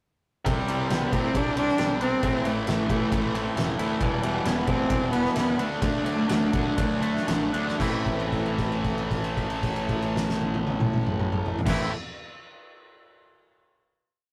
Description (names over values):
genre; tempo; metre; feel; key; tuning
quiet-loud alternative rock; 114-136 BPM; 4/4; straight; A dorian; A4 = 440 Hz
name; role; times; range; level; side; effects
clear cello; melody; 0.5-7.3 s; G3 to D4; -30 LUFS; equal; none
twangy electric guitar; arpeggios; 0.5-11.9 s; A2 to E4; -36 LUFS; equal; none
tight distorted guitar; riff; 0.5-11.9 s; E2 to D4; -32 LUFS; equal; distortion
fuzz picked electric bass; bass; 0.5-11.9 s; E1 to A2; -33 LUFS; equal; overdrive
loose indie drum kit; drums; 0.5-11.8 s; crash cymbal, kick drum, ride cymbal, snare drum, toms; -31 LUFS; equal; none
room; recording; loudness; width
moderate booth ambience, RT60 0.2 s; rough rehearsal-room recording, tube saturation; -26 LUFS; mono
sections
0.5-7.8 pre-chorus; 7.8-12.0 final chord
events
slowing down 4.0-7.8; held note 7.8-11.7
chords
0.5 Csus2; 2.2 Am; 4.0 Em; 5.6 D; 7.8 Am